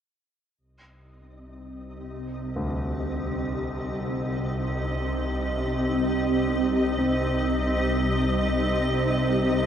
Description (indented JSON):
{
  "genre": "dark ambient drone",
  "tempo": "free time",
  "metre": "none",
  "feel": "none",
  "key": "C minor",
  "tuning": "A4 = 436 Hz",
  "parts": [
    { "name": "granular cloud pad", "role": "sustained chords", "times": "1.7-9.7 s", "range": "C4 to Eb5", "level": "-27 LUFS", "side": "equal", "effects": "built-in reverb" },
    { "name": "bowed-like drone", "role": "drone", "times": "1.5-9.7 s", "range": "C2 to C3", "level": "-28 LUFS", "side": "equal", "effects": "built-in reverb" },
    { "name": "flickering grainy texture", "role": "texture", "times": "1.9-9.7 s", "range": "Eb4 to Eb5", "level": "-34 LUFS", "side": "equal", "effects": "built-in reverb, shimmer reverb" },
    { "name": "warm concert grand piano", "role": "arpeggios", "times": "2.6-9.7 s", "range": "D2 to C4", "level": "-35 LUFS", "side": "equal", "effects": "dub echo" }
  ],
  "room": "wet spring reverb, RT60 2.7 s",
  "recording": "echo-heavy mix, nothing above 10.4 kHz",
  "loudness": "-23 LUFS",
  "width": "side -8 dB against mid",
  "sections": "0.6-9.7 A section",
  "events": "fade-in on synth drone 0.6-9.7; fade-in on ambient pad 0.6-9.7; fade-in on synth texture 0.6-9.7; fade-in on grand piano 0.6-9.7",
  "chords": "0.6 Cm"
}